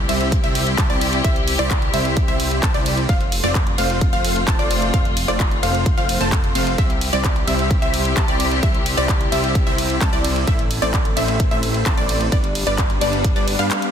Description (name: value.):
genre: EDM, festival progressive house.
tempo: 130 BPM.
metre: 4/4.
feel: straight.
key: C major.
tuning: A4 = 441 Hz.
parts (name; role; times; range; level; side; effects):
warm studio string section; sustained chords; 0.0-13.9 s; C3 to G4; -26 LUFS; left 3 dB; sidechain pumping.
fat analog bass; bass; 0.0-13.7 s; F1 to G2; -24 LUFS; equal; sidechain pumping.
wide unison pluck; arpeggios; 0.1-13.9 s; D5 to A5; -26 LUFS; equal; sidechain pumping, ping-pong delay.
supersaw stab; riff; 0.1-13.9 s; G3 to A5; -24 LUFS; equal; sidechain pumping, ping-pong delay.
pop drum kit; drums; 0.1-13.9 s; handclaps, hi-hat, ride cymbal; -25 LUFS; right 1 dB; none.
electronic kick drum; drums; 0.3-13.3 s; none; -20 LUFS; equal; none.
room: light reverb, digital ambience.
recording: dense, heavily limited modern master.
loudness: -16 LUFS.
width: side -8 dB against mid.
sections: 0.0-13.9 A section.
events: none.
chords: 0.0 C; 3.1 F; 6.8 C; 10.5 Am; 12.3 G.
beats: 0.32 0.78 | 1.24 1.71 2.17 2.63 | 3.09 3.55 4.01 4.47 | 4.94 5.40 5.86 6.32 | 6.78 7.24 7.71 8.17 | 8.63 9.09 9.55 10.01 | 10.47 10.94 11.40 11.86 | 12.32 12.78 13.24 13.71.